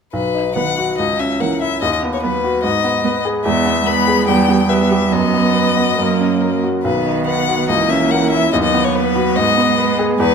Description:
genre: quick classical-period movement for piano quartet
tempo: 143 BPM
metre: 4/4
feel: rubato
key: B major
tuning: A4 = 439 Hz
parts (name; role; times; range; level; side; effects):
- clear violin; melody; 0.1-10.3 s; B4 to B5; -18 LUFS; left 7 dB; none
- clear baby grand piano; accompaniment; 0.1-10.3 s; B1 to B4; -18 LUFS; equal; none
- dark cello; second line; 0.6-10.3 s; D#3 to G#3; -20 LUFS; right 7 dB; none
- warm viola; accompaniment; 0.6-10.3 s; A#3 to B3; -22 LUFS; right 3 dB; none
room: wet recital hall reverb, RT60 1.6 s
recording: minimal, uncompressed stereo recording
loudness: -14 LUFS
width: side -6 dB against mid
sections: 0.1-10.3 A section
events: none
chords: 0.1 B; 1.0 A#dim/C#; 1.8 B/D#; 2.6 G#m; 3.5 E; 4.3 Em; 5.1 B/F#; 6.0 F#; 6.8 B; 7.7 A#dim/C#; 8.5 B/D#; 9.4 G#m

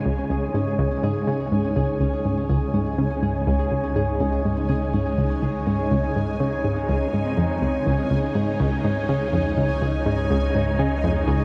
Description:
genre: ambient, sequencer-driven space music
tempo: 123 BPM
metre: 4/4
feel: straight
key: unclear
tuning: A4 = 440 Hz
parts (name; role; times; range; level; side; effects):
- phased string machine; sustained chords; 0.0-11.4 s; Db3 to Ab5; -30 LUFS; equal; ensemble chorus, phaser
- round analog bass; bass; 0.0-11.4 s; Db2; -33 LUFS; equal; none
- bubbling stepped-filter texture; texture; 0.0-11.4 s; Ab5; -38 LUFS; equal; chorus, built-in reverb
- analog pluck; riff; 0.1-11.4 s; Db2 to Db3; -25 LUFS; equal; chorus, delay
- Celtic harp; arpeggios; 0.2-11.4 s; C4 to Db5; -30 LUFS; equal; delay
room: wet huge ambient reverb, RT60 8.4 s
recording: dark, warm production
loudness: -23 LUFS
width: mono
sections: 0.0-11.4 A section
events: fade-in on synth texture 0.0-11.4; filter sweep on synth arpeggio sound 0.0-11.4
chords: 0.0 Db5

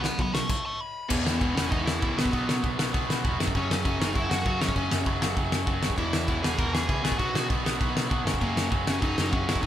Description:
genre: punk rock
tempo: 197 BPM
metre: 4/4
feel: straight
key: unclear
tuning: A4 = 439 Hz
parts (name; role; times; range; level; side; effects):
- dark smooth lead guitar; melody; 0.0-9.7 s; A#3 to C#6; -30 LUFS; left 1 dB; overdrive
- overdriven electric guitar; riff; 0.0-9.7 s; E2 to B3; -29 LUFS; equal; none
- hollow-body short-scale picked electric bass; bass; 0.0-9.7 s; E1 to B2; -33 LUFS; equal; none
- loose indie drum kit; drums; 0.0-9.7 s; crash cymbal, kick drum, snare drum; -27 LUFS; equal; none
room: light reverb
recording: band playing live in one room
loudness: -24 LUFS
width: side -11 dB against mid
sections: 0.0-1.1 A section; 1.1-9.7 B section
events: lead electric guitar solo 0.0-1.1; stop 0.5-1.1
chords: 0.0 B5; 1.1 E5; 2.2 B5; 3.4 F#5; 6.0 E; 7.0 B5; 8.3 F#5

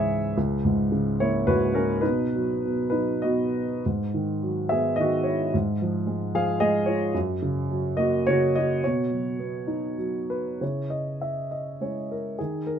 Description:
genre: classical, lyrical solo piano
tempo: 95-112 BPM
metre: 3/4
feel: rubato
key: C# dorian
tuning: A4 = 440 Hz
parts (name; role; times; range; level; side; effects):
- dark grand piano; solo; 0.0-12.8 s; C#2 to E#5; -23 LUFS; equal; none
room: light reverb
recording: none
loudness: -23 LUFS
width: side -8 dB against mid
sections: 0.0-10.6 A section; 10.6-12.8 B section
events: none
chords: 0.4 F#add9/C#; 2.0 B; 3.8 G#m7; 5.5 C#add9/G#; 7.2 F#; 8.8 Badd9; 10.6 C#m

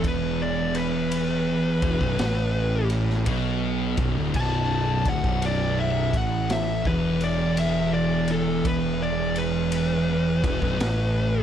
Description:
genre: stoner and doom metal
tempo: 56 BPM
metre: 4/4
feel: swing 66% on 8ths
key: unclear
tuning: A4 = 440 Hz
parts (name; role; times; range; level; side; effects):
- fuzz lead guitar; melody; 0.0-11.4 s; A4 to A5; -28 LUFS; left 3 dB; distortion, tape echo
- scooped high-gain guitar; riff; 0.0-11.4 s; B1 to B2; -31 LUFS; right 1 dB; distortion
- thick fuzz guitar; riff; 0.0-11.4 s; B1 to B2; -29 LUFS; left 6 dB; distortion
- thick fuzz guitar; riff; 0.0-11.4 s; B1 to B2; -28 LUFS; right 8 dB; distortion
- fuzz picked electric bass; bass; 0.0-11.4 s; B0 to B1; -30 LUFS; equal; overdrive, tube saturation
- raw garage drum kit; drums; 0.0-11.1 s; crash cymbal, kick drum, ride cymbal, snare drum; -31 LUFS; equal; none
room: light reverb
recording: none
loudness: -21 LUFS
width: side -9 dB against mid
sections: 0.0-11.4 A section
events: lead electric guitar solo 0.0-11.4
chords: none

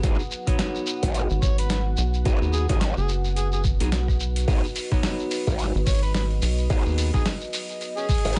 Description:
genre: glitch hop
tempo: 108 BPM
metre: 4/4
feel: swing 58% on 16ths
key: G# minor pentatonic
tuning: A4 = 440 Hz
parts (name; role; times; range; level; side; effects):
- dark analog pad; sustained chords; 0.0-8.4 s; F#4 to F#5; -37 LUFS; equal; chorus, sidechain pumping
- semi-hollow electric guitar; stabs; 0.0-7.2 s; B3 to C#5; -34 LUFS; equal; sidechain pumping, tape echo
- growl bass; bass; 0.0-8.4 s; G#1; -27 LUFS; equal; chorus
- boom bap sampler-style drum kit; drums; 0.0-8.4 s; hi-hat, rim click, snare drum; -33 LUFS; equal; small room ambience
- electronic kick drum; drums; 0.0-8.2 s; none; -26 LUFS; equal; small room ambience
- shekere; percussion; 0.0-8.4 s; none; -37 LUFS; equal; none
- rubbery square bass; bass; 1.3-7.1 s; F#1 to D#2; -26 LUFS; equal; none
- overdriven harmonica; melody; 1.4-8.4 s; C#4 to C#5; -36 LUFS; equal; tape echo
room: digital ambience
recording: nothing above 10.8 kHz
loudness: -24 LUFS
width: mono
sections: 0.0-8.4 A section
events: none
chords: 0.0 G#m7

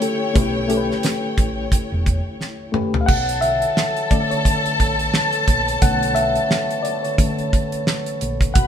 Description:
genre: lush 1970s-style soul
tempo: 88 BPM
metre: 4/4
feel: swing 58% on 16ths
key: B minor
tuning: A4 = 443 Hz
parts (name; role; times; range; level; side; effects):
- warm studio string section; second line; 0.0-8.7 s; E4 to B5; -24 LUFS; left 2 dB; none
- reed electric piano; accompaniment; 0.0-8.7 s; D3 to F#5; -22 LUFS; left 2 dB; fast tremolo
- damped 70s drum kit; drums; 0.0-8.7 s; crash cymbal, hi-hat, kick drum, snare drum, toms; -20 LUFS; right 1 dB; none
- hollow-body short-scale fingered electric bass; bass; 0.4-8.7 s; E1 to B1; -26 LUFS; right 1 dB; none
- mellow French horn section; sustained chords; 3.1-8.7 s; B3 to C#5; -29 LUFS; right 3 dB; none
room: moderate stone room reverb, RT60 1.3 s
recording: band playing live in one room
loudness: -17 LUFS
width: side -9 dB against mid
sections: 0.0-3.1 A section; 3.1-8.7 B section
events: drum fill 2.4-3.1; reed electric piano solo 3.1-8.7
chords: 0.0 A9/B; 3.1 Bm9

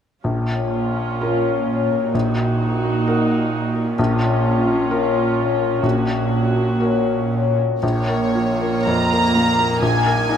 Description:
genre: cinematic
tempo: 56-66 BPM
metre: 4/4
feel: rubato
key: Bb minor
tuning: A4 = 440 Hz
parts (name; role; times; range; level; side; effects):
- felt-muted upright piano; accompaniment; 0.2-10.4 s; Bb1 to Bb4; -22 LUFS; left 1 dB; none
- warm symphonic viola section; accompaniment; 0.2-10.4 s; Bb3 to Gb4; -24 LUFS; right 2 dB; none
- concert harp; arpeggios; 0.2-10.4 s; Bb2 to Gb5; -25 LUFS; left 10 dB; none
- rich symphonic cello section; bass; 0.2-10.4 s; Bb2; -22 LUFS; right 4 dB; none
- warm symphonic violin section; melody; 7.8-10.4 s; Db5 to Bb5; -20 LUFS; equal; none
room: light reverb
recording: close, detailed microphones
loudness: -17 LUFS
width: side -8 dB against mid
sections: 0.2-7.8 A section; 7.8-10.4 B section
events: none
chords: 0.2 Bbm; 2.1 Ebm/Bb; 4.0 Bbm; 5.8 Gb/Bb; 7.8 Bbm; 9.8 Ebm/Bb

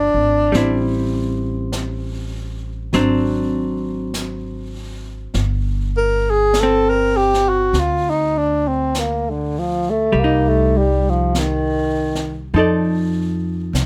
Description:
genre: jazz ballad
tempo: 50 BPM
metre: 4/4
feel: swing 68% on 8ths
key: unclear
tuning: A4 = 440 Hz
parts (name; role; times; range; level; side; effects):
- breathy tenor saxophone; melody; 0.0-12.6 s; D3 to Bb4; -19 LUFS; equal; none
- archtop guitar, miked and amplified; accompaniment; 0.0-13.9 s; F3 to D5; -23 LUFS; equal; none
- upright bass; bass; 0.0-13.9 s; G1 to F2; -25 LUFS; equal; none
- jazz brush drum kit; drums; 0.5-13.9 s; brushed snare drum, hi-hat, snare drum; -32 LUFS; equal; none
room: light reverb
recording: none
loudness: -19 LUFS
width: mono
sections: 0.0-13.9 A section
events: tenor saxophone solo 0.0-13.9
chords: 0.0 C7sus4 (rootless); 0.5 Am7; 2.9 Ab7#11; 5.3 Gsus4; 10.1 Cm; 12.5 F6

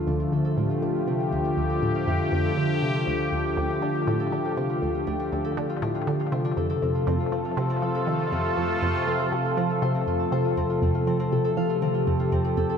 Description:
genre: ambient, sequencer-driven space music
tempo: 120 BPM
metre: 4/4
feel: straight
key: D minor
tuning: A4 = 440 Hz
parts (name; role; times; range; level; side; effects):
- sweeping resonant pad; sustained chords; 0.0-12.8 s; C3 to A4; -24 LUFS; left 1 dB; chorus
- concert harp; arpeggios; 0.0-12.8 s; C4 to A5; -36 LUFS; moving between left 6 dB and right 4 dB; auto-pan, ping-pong delay
- resonant blip pluck; riff; 0.0-12.7 s; D2 to F3; -28 LUFS; right 1 dB; chorus, ping-pong delay
room: wet concert hall reverb, RT60 2.2 s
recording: none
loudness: -23 LUFS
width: side -7 dB against mid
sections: 0.0-12.8 A section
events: fade-in on harp 0.0-12.8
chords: 0.0 Dm; 6.6 F

